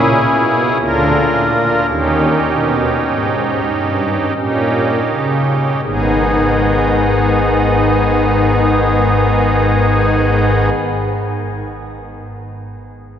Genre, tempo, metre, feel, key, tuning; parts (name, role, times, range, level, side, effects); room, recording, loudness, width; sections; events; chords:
classical, chorale-style piece for pipe organ; 39-58 BPM; 3/4; rubato; G# minor; A4 = 436 Hz
pipe organ, strings celeste; solo; 0.0-10.7 s; G#1 to A#4; -13 LUFS; equal
wet cathedral reverb, RT60 5.8 s; recorded in a church or concert hall; -12 LUFS; side -9 dB against mid
0.0-5.8 A section; 5.8-10.3 B section
slowing down 0.0-5.8
0.0 A#dim; 0.8 A#/D; 1.9 D#7; 5.8 G#m